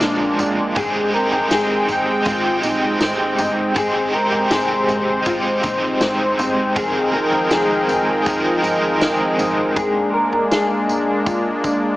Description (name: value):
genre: dream pop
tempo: 80 BPM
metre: 4/4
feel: straight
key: Ab lydian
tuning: A4 = 439 Hz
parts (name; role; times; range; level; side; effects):
- cranked stack guitar; accompaniment; 0.0-10.3 s; F2 to Bb4; -22 LUFS; right 1 dB; overdrive, tremolo, analog chorus
- warm analog pad; sustained chords; 0.0-12.0 s; F3 to G5; -19 LUFS; equal; chorus
- mellow electric guitar; arpeggios; 0.0-12.0 s; D4 to Bb4; -22 LUFS; left 1 dB; analog chorus, diffuse ambient delay
- solid FM bass; bass; 0.0-9.7 s; F1 to Bb1; -37 LUFS; equal; none
- vintage drum kit; drums; 0.0-11.8 s; kick drum, snare drum, tambourine, toms; -24 LUFS; equal; none
room: wet plate reverb, RT60 2.0 s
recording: dreamy mix soaked in reverb, small speaker sound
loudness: -16 LUFS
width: side -17 dB against mid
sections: 0.0-12.0 A section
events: none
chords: 0.0 Bb9; 0.8 Abmaj7; 6.8 Fm11; 9.8 Bb7